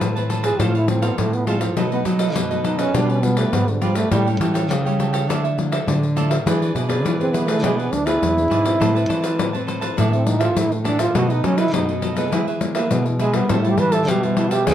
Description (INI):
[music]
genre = samba and choro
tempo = 102 BPM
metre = 4/4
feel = straight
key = A harmonic minor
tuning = A4 = 440 Hz
[part]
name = cavaquinho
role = accompaniment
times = 0.0-14.7 s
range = D4 to A5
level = -27 LUFS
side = right 5 dB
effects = none
[part]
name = nylon-string guitar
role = accompaniment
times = 0.0-14.7 s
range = F#2 to B4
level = -26 LUFS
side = left 3 dB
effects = none
[part]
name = nylon-string guitar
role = bass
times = 0.0-14.7 s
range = D2 to F#3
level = -22 LUFS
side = equal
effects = none
[part]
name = pandeiro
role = percussion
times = 0.0-14.7 s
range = none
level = -24 LUFS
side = left 4 dB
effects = none
[part]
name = breathy trombone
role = melody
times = 0.4-14.7 s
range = D3 to B4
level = -21 LUFS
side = right 2 dB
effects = none
[sound]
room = light reverb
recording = dark, warm production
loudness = -17 LUFS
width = side -11 dB against mid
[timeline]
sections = 0.0-14.7 A section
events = trombone solo 0.0-14.7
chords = 0.0 Amadd9; 0.6 F/A; 1.8 B7; 2.9 G7/B; 4.1 A7; 5.3 Dmadd9; 6.5 E7; 8.8 Amadd9; 10.0 Dsus2/A; 11.2 B7; 12.3 E; 13.5 Am7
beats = 0.01 0.60 1.19 | 1.77 2.36 2.94 3.53 | 4.12 4.70 5.29 5.88 | 6.46 7.05 7.64 8.22 | 8.81 9.40 9.98 10.57 | 11.16 11.74 12.33 12.91 | 13.50 14.09 14.67